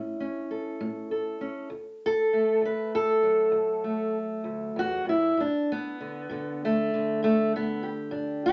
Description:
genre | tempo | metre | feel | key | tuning
acoustic country blues, solo or duo | 65 BPM (dotted quarters) | 12/8 | straight | D major | A4 = 439 Hz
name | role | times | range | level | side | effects
fingerpicked steel-string acoustic guitar | solo | 0.0-8.5 s | D2 to B4 | -28 LUFS | equal | none
room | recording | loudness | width
wet studio reverb, RT60 0.6 s | nothing above 7.7 kHz | -27 LUFS | mono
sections
0.0-1.7 A section; 1.7-8.5 B section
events
steel-string acoustic guitar solo 1.7-8.5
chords
0.0 A; 1.7 D; 5.4 G

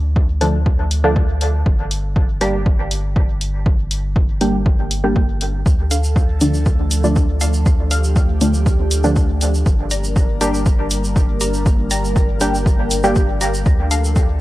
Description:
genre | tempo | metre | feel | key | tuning
dub techno | 120 BPM | 4/4 | straight | unclear | A4 = 440 Hz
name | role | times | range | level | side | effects
soft dub sub bass | bass | 0.0-14.4 s | G1 to D2 | -20 LUFS | equal | tube saturation, sidechain pumping
electronic kick drum | drums | 0.2-14.3 s | none | -16 LUFS | equal | none
filtered dub chord stab | stabs | 0.4-13.2 s | D3 to G4 | -20 LUFS | equal | chorus, phaser, dub echo
electronic hi-hat | drums | 0.4-14.0 s | none | -24 LUFS | left 1 dB | none
airy breathy pad | sustained chords | 5.7-14.4 s | F3 to Bb4 | -25 LUFS | left 1 dB | chorus, phaser, sidechain pumping
tube shaker | percussion | 5.7-14.3 s | none | -28 LUFS | right 2 dB | none
filtered dub chord stab | riff | 5.9-14.0 s | D4 to Bb5 | -29 LUFS | left 1 dB | phaser, sidechain pumping, dub echo
room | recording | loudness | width
little or no reverb | dry, gritty hardware recording, cassette tape | -14 LUFS | side -16 dB against mid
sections
0.0-14.4 A section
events
none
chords
0.0 Dm; 1.7 Gm; 5.7 Dm; 9.7 Gm; 13.7 Dm

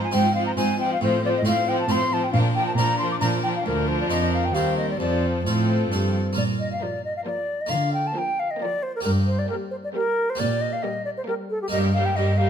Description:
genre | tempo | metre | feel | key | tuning
classical, baroque-style concerto movement with solo episodes | 135 BPM | 3/4 | straight | Bb major | A4 = 437 Hz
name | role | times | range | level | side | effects
concert flute | melody | 0.0-12.5 s | G4 to D6 | -26 LUFS | left 1 dB | none
rich chamber violin section | melody | 0.0-12.5 s | G4 to C5 | -35 LUFS | left 2 dB | none
warm chamber violin section | second line | 0.0-12.5 s | Bb3 to D4 | -30 LUFS | left 4 dB | none
harpsichord | accompaniment | 0.0-12.5 s | D2 to C5 | -31 LUFS | equal | none
rich chamber viola section | accompaniment | 0.0-12.5 s | F3 to G3 | -30 LUFS | right 2 dB | none
dark chamber cello section | bass | 0.0-12.5 s | D2 to D3 | -24 LUFS | right 2 dB | none
room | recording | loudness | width
wet stone room reverb, RT60 1.3 s | none | -21 LUFS | side -8 dB against mid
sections
0.0-6.4 A section; 6.4-12.5 A section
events
none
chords
0.0 Fm/Ab; 1.0 F/A; 2.3 Bb; 3.7 Bb/D; 4.5 Cm7/Eb; 5.0 F; 6.4 Bb5; 7.7 Bb/D; 9.1 Gm; 10.4 Gm/Bb; 11.7 Eb/G

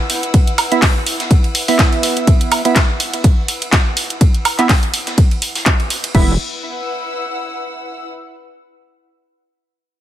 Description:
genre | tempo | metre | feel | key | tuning
bass house | 124 BPM | 4/4 | swing 56% on 16ths | unclear | A4 = 440 Hz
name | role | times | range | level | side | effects
dark studio string section | texture | 0.0-8.0 s | E4 to E6 | -26 LUFS | left 1 dB | sidechain pumping
breakbeat sampler-style drum kit | drums | 0.1-6.1 s | hi-hat, ride cymbal, snare drum | -26 LUFS | right 2 dB | high-pass filter on snare, high-pass filter on cymbals, high-pass filter on hats, high-pass filter on room
garage drum kit | drums | 0.1-6.3 s | crash cymbal, handclaps, hi-hat, woodblock | -18 LUFS | equal | none
electronic kick drum | drums | 0.3-6.3 s | none | -12 LUFS | equal | overdrive
percussive organ stab | stabs | 0.7-6.3 s | B3 to E5 | -19 LUFS | right 4 dB | analog chorus, sidechain pumping, digital delay
wobble bass | bass | 6.1-6.4 s | E1 | -17 LUFS | equal | chorus, tube saturation, sidechain pumping
room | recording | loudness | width
digital ambience | none | -13 LUFS | side -12 dB against mid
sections
0.0-6.1 A section; 6.1-8.1 B section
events
fade-out on string section 0.0-6.1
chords
0.0 E5

